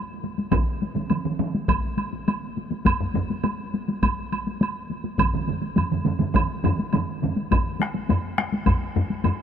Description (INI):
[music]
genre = japanese traditional, taiko drum ensemble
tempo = 103 BPM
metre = 4/4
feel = straight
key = none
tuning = none
[part]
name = taiko ensemble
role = percussion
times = 0.2-9.4 s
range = none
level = -26 LUFS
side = left 2 dB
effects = none
[part]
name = taiko ensemble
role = percussion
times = 0.5-1.5, 5.2-7.4 s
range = none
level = -28 LUFS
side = right 4 dB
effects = none
[part]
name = taiko ensemble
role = percussion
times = 0.5-8.8 s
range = none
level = -26 LUFS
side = equal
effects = none
[part]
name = woodblock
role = percussion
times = 0.5-9.4 s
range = none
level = -30 LUFS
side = right 6 dB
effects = none
[part]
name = taiko ensemble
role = percussion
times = 2.9-9.4 s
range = none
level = -27 LUFS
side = left 1 dB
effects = none
[sound]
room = moderate huge ambient reverb, RT60 7.8 s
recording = none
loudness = -22 LUFS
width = side -8 dB against mid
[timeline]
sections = 0.0-7.5 A section; 7.5-9.4 B section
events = none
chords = none